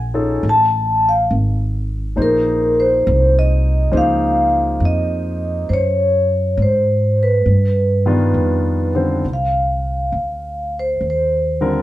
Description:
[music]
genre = jazz ballad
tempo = 68 BPM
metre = 4/4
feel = swing 69% on 8ths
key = unclear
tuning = A4 = 440 Hz
[part]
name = vibraphone with soft mallets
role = melody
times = 0.0-11.6 s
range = Bb4 to A5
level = -17 LUFS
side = equal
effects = none
[part]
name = upright bass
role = bass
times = 0.0-11.8 s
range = Ab1 to Ab2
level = -18 LUFS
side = equal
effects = none
[part]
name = warm grand piano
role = accompaniment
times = 0.1-11.8 s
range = D3 to C5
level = -20 LUFS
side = left 1 dB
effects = none
[sound]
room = moderate stone room reverb, RT60 0.9 s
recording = band playing live in one room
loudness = -14 LUFS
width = side -15 dB against mid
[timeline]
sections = 0.0-9.2 A section; 9.2-11.8 B section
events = vibraphone solo 9.2-11.8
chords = 0.4 N.C.; 2.2 Bbm9; 5.7 Gbsus2; 7.5 G7b13; 9.2 Cmadd9

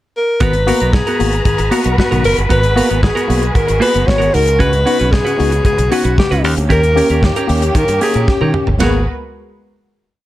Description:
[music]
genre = disco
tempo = 114 BPM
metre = 4/4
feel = straight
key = G# minor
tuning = A4 = 440 Hz
[part]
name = warm alto saxophone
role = melody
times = 0.2-9.1 s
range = F#4 to C#5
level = -16 LUFS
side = left 1 dB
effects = none
[part]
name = mellow tine electric piano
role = accompaniment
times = 0.4-9.0 s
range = G#2 to G4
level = -20 LUFS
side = left 2 dB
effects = medium stereo tremolo
[part]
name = semi-hollow electric guitar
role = accompaniment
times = 0.4-9.0 s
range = B3 to B4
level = -21 LUFS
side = right 4 dB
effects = none
[part]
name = warm studio string section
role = sustained chords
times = 0.4-9.1 s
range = C#3 to A#5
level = -23 LUFS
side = equal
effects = none
[part]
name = modern bright fingered electric bass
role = bass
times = 0.4-9.1 s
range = F#1 to D#3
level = -16 LUFS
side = equal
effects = none
[part]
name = damped 70s drum kit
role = drums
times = 0.4-8.9 s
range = hi-hat, kick drum, ride cymbal, snare drum, toms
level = -18 LUFS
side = equal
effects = none
[sound]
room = light reverb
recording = none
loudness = -11 LUFS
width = side -15 dB against mid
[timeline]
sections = 0.0-0.4 pickup bar; 0.4-8.8 verse; 8.8-10.3 final chord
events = drum fill 8.3-8.8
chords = 0.4 G#m9; 4.3 C#7sus4; 6.4 D#7; 8.8 G#m9

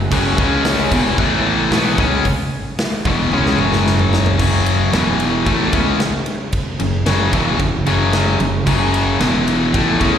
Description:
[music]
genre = hard rock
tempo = 112 BPM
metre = 4/4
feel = straight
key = unclear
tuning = A4 = 440 Hz
[part]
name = crunchy overdriven guitar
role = riff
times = 0.0-10.2 s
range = E2 to C#4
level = -20 LUFS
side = right 7 dB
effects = none
[part]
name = distorted electric guitar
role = riff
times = 0.0-10.2 s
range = E2 to C#4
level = -18 LUFS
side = left 9 dB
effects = overdrive
[part]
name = fuzz fingered electric bass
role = bass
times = 0.0-10.2 s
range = E1 to C#2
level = -21 LUFS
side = equal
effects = overdrive
[part]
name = big rock drum kit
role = drums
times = 0.1-10.1 s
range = crash cymbal, hi-hat, kick drum, ride cymbal, snare drum, toms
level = -20 LUFS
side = equal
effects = none
[sound]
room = light reverb, small room ambience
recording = live gig heard through the venue's PA, recital hall reverb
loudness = -14 LUFS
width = side -8 dB against mid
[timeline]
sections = 0.0-4.4 A section; 4.4-10.2 B section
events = drum fill 3.3-4.4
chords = 0.4 C#5; 0.9 E5; 1.2 A5; 1.7 F#5; 4.9 E5; 5.5 F#5; 9.2 E5

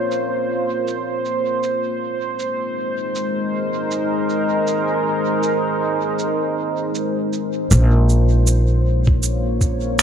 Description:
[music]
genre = ambient dub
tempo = 79 BPM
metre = 4/4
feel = swing 58% on 16ths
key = Bb minor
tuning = A4 = 440 Hz
[part]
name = deep dark ambient pad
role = sustained chords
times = 0.0-10.0 s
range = Ab3 to Db5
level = -20 LUFS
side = equal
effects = chorus, built-in reverb
[part]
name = electronic shaker and finger snaps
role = drums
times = 0.1-10.0 s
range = none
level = -22 LUFS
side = right 3 dB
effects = low-pass filter on perc, low-pass filter on snare, dub echo
[part]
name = upright bass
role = bass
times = 7.7-10.0 s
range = Bb1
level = -15 LUFS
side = equal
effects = none
[part]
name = electronic kick drum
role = drums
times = 7.7-9.8 s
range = none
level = -16 LUFS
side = equal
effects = none
[sound]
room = light reverb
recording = echo-heavy mix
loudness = -17 LUFS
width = side -8 dB against mid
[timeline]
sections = 0.0-7.7 A section; 7.7-10.0 B section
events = none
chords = 0.0 Bbmadd9; 1.6 Ab; 7.7 Bbmadd9

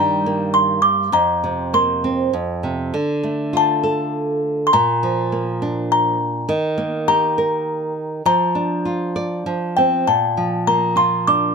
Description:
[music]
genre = children's music, lullaby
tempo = 101 BPM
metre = 3/4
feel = rubato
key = Bb major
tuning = A4 = 442 Hz
[part]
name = music box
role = melody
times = 0.0-11.5 s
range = G5 to D6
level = -18 LUFS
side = left 2 dB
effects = none
[part]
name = flamenco guitar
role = accompaniment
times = 0.0-11.5 s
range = F2 to D5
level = -20 LUFS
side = right 2 dB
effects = none
[sound]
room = light reverb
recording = close, detailed microphones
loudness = -16 LUFS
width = side -5 dB against mid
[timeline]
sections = 0.0-10.1 A section; 10.1-11.5 B section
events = none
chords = 0.0 Eb/G; 1.1 Fsus4; 2.3 F5; 2.9 Dm; 4.7 Bb; 6.5 Eb; 8.3 Bb/F; 9.5 F5; 10.1 Bb

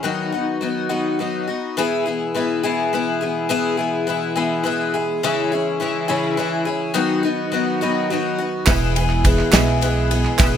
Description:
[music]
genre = indie folk with a building arrangement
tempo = 70 BPM (dotted quarters)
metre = 6/8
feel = straight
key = unclear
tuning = A4 = 440 Hz
[part]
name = picked twelve-string acoustic guitar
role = accompaniment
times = 0.0-10.6 s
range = C#3 to G#4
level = -20 LUFS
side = left 4 dB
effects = lush chorus
[part]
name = mellow brass ensemble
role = sustained chords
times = 0.0-10.6 s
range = B2 to F#4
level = -27 LUFS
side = right 4 dB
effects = stereo widening
[part]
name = felt-muted upright piano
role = accompaniment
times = 8.7-10.6 s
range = E2 to E5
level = -25 LUFS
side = right 9 dB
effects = none
[part]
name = upright bass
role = bass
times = 8.7-10.6 s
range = E1 to B1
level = -20 LUFS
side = right 1 dB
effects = none
[part]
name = natural country drum kit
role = drums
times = 8.7-10.5 s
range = kick drum, ride cymbal, snare drum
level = -19 LUFS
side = equal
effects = none
[part]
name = group handclap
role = percussion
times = 8.7-10.5 s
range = none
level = -23 LUFS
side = right 7 dB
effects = none
[part]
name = tambourine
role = percussion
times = 8.7-10.5 s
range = none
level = -33 LUFS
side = left 6 dB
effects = none
[sound]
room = light reverb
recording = none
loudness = -18 LUFS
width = side -9 dB against mid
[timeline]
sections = 0.0-1.8 A section; 1.8-10.6 A section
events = break 0.0-1.8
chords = 0.0 B/D#; 1.8 E; 5.2 C#m; 6.9 B/D#; 8.7 E

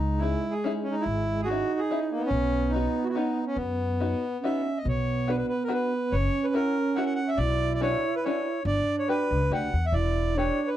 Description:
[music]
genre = musette waltz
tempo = 142 BPM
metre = 3/4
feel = swing 54% on 8ths, rubato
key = B major, B harmonic minor from 4.9 s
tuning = A4 = 440 Hz
[part]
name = accordion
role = melody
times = 0.0-10.8 s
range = A#3 to F#5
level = -29 LUFS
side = equal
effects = none
[part]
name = bright reedy wooden-headed alto flute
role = second line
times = 0.0-10.8 s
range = G#3 to E4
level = -30 LUFS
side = right 4 dB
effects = none
[part]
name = upright bass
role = bass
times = 0.0-10.5 s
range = E1 to F#2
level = -28 LUFS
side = left 1 dB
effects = none
[part]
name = open-back banjo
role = accompaniment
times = 0.2-10.6 s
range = B3 to B4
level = -32 LUFS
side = left 5 dB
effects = none
[sound]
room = studio reverb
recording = dry, close 1970s-style studio recording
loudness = -24 LUFS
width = side -12 dB against mid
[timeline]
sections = 0.0-4.9 A section; 4.9-10.8 B section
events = none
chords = 0.0 C#madd9; 2.3 Badd9; 4.9 Bm; 6.1 F#7; 7.4 Bmadd9; 8.6 Gmaj7; 9.9 Em7

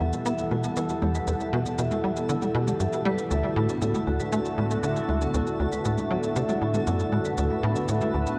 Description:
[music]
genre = ambient, sequencer-driven space music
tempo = 118 BPM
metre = 4/4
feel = straight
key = unclear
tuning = A4 = 439 Hz
[part]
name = sweeping resonant pad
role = sustained chords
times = 0.0-8.4 s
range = D3 to F#5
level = -31 LUFS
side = equal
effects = chorus
[part]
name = vibraphone with medium mallets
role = arpeggios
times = 0.0-8.4 s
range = B3 to E5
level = -34 LUFS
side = equal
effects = analog delay
[part]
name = tight sequencer bass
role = riff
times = 0.0-8.3 s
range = D2 to B3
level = -30 LUFS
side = equal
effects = ensemble chorus, analog delay
[part]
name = twinkling granular texture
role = texture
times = 0.0-8.4 s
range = A4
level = -43 LUFS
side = equal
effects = built-in reverb
[part]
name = electronic shaker and toms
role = percussion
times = 0.1-8.4 s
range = none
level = -38 LUFS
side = equal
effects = analog delay
[sound]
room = wet cathedral reverb, RT60 5.7 s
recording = in a vast, echoing space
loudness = -26 LUFS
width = mono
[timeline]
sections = 0.0-8.4 A section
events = fade-in on synth texture 0.0-8.4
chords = 0.0 Emadd9; 3.3 D

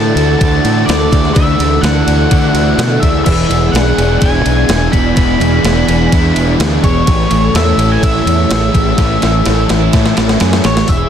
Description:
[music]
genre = rock, shoegaze and dream pop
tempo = 126 BPM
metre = 4/4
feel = straight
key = unclear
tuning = A4 = 439 Hz
[part]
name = octave-fuzz lead guitar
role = melody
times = 0.0-11.1 s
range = C#5 to B5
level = -19 LUFS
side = left 1 dB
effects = distortion, analog delay
[part]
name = string machine, violas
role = sustained chords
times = 0.0-10.8 s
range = C#5 to E6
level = -25 LUFS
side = equal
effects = ensemble chorus
[part]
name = picked twelve-string acoustic guitar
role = arpeggios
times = 0.0-11.1 s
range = E4 to B4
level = -22 LUFS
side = equal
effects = ensemble chorus, analog delay
[part]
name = crunchy overdriven guitar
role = riff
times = 0.0-11.1 s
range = A2 to G#4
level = -19 LUFS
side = right 12 dB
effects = reverse reverb
[part]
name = distorted electric guitar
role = riff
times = 0.0-10.9 s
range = A2 to F#4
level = -19 LUFS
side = equal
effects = distortion
[part]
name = raw garage guitar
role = riff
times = 0.0-11.1 s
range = A2 to E4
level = -19 LUFS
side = left 13 dB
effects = overdrive, analog chorus
[part]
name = growling fingered electric bass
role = bass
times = 0.0-11.0 s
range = E1 to D3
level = -14 LUFS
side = equal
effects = overdrive
[part]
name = crisp 8-bit digital drum machine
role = drums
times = 0.2-11.0 s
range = crash cymbal, hi-hat, kick drum, ride cymbal, snare drum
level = -15 LUFS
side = equal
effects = none
[sound]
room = light reverb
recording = dense, heavily limited modern master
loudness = -9 LUFS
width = side -8 dB against mid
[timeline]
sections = 0.0-10.9 A section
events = drum fill 9.0-10.9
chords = 0.0 Dadd9; 3.3 E7; 7.1 A

